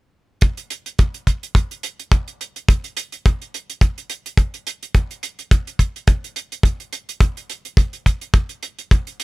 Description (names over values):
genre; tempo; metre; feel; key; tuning
nu-disco, nu disco; 106 BPM; 4/4; swing 55% on 16ths; none; none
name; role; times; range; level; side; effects
hi-hat; drums; 0.4-9.2 s; none; -29 LUFS; right 6 dB; none
kick drum; drums; 0.4-9.0 s; none; -14 LUFS; equal; none
room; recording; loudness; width
little or no reverb; none; -18 LUFS; side -22 dB against mid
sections
0.4-9.2 A section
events
none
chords
none